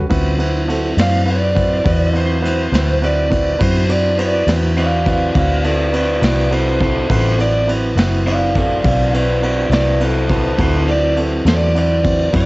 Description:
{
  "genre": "slow blues",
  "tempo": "69 BPM (dotted quarters)",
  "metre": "12/8",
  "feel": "straight",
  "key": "D mixolydian",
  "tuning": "A4 = 441 Hz",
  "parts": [
    { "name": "bright upright piano", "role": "accompaniment", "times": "0.0-12.5 s", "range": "C4 to D5", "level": "-22 LUFS", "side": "right 2 dB", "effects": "cassette tape" },
    { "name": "mellow tonewheel organ", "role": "sustained chords", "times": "0.0-12.5 s", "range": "F#3 to C5", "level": "-24 LUFS", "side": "left 1 dB", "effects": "slow rotary speaker, cassette tape" },
    { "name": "vintage muted fingered electric bass", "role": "bass", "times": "0.0-12.5 s", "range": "F#1 to F#2", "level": "-18 LUFS", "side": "equal", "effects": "none" },
    { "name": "vintage brush drum kit", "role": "drums", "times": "0.1-12.5 s", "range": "kick drum, ride cymbal, snare drum", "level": "-20 LUFS", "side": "equal", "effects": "cassette tape" },
    { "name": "lead guitar through a small cranked amp", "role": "melody", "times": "1.0-12.5 s", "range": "A4 to F5", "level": "-19 LUFS", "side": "right 1 dB", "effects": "overdrive, cassette tape" }
  ],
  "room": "little or no reverb",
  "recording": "home recording on cassette, nothing above 7.9 kHz",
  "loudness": "-13 LUFS",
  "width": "side -22 dB against mid",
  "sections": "0.1-12.5 A section",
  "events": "lead electric guitar solo 0.1-12.5",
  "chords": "0.1 D13"
}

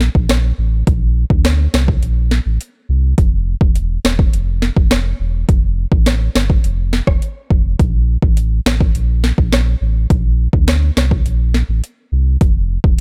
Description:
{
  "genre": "dancehall",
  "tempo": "104 BPM",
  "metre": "4/4",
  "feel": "straight",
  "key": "unclear",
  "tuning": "A4 = 440 Hz",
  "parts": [
    { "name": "sub bass with octave", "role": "bass", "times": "0.0-13.0 s", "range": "E1 to D2", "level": "-18 LUFS", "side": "equal", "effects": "none" },
    { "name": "afro-pop drum kit", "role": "drums", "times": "0.0-13.0 s", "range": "hi-hat, kick drum, rim click, snare drum", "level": "-16 LUFS", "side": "equal", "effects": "overdrive" }
  ],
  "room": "little or no reverb",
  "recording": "none",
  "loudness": "-15 LUFS",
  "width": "mono",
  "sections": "0.0-13.0 A section",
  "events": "none",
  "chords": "none"
}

